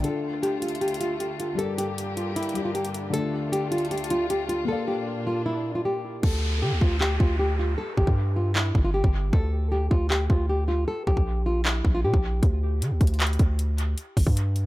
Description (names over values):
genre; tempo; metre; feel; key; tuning
hip hop, trap; 155 BPM; 4/4; half-time; D minor; A4 = 440 Hz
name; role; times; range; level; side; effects
nylon-string guitar; melody; 0.0-12.4 s; E4 to A4; -28 LUFS; equal; dub echo
felt-muted upright piano; accompaniment; 0.0-6.3 s; D3 to F5; -31 LUFS; left 4 dB; none
dark chamber string section; sustained chords; 0.0-6.2 s; D2 to G4; -34 LUFS; equal; none
hard-hitting 808-style bass; bass; 0.0, 6.2-14.7 s; G1 to D3; -24 LUFS; equal; none
trap drum kit; drums; 0.0-14.6 s; crash cymbal, handclaps, hi-hat, kick drum; -24 LUFS; equal; none
downlifter; sound effects; 6.2-9.3 s; none; -36 LUFS; equal; none
room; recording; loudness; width
small room ambience; echo-heavy mix; -22 LUFS; side -17 dB against mid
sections
0.0-6.2 A section; 6.2-14.7 B section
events
hi-hats muted 6.2-12.4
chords
0.0 Dm; 1.6 Gm; 3.1 Dm; 4.7 Bb; 6.2 D5; 7.8 N.C.; 9.3 D5; 10.9 Gm/Bb; 12.4 N.C.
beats
| 0.04 0.43 0.81 1.20 | 1.59 1.98 2.36 2.75 | 3.14 3.52 3.91 4.30 | 4.68 5.07 5.46 5.85 | 6.23 6.62 7.01 7.39 | 7.78 8.17 8.56 8.94 | 9.33 9.72 10.10 10.49 | 10.88 11.27 11.65 12.04 | 12.43 12.81 13.20 13.59 | 13.97 14.36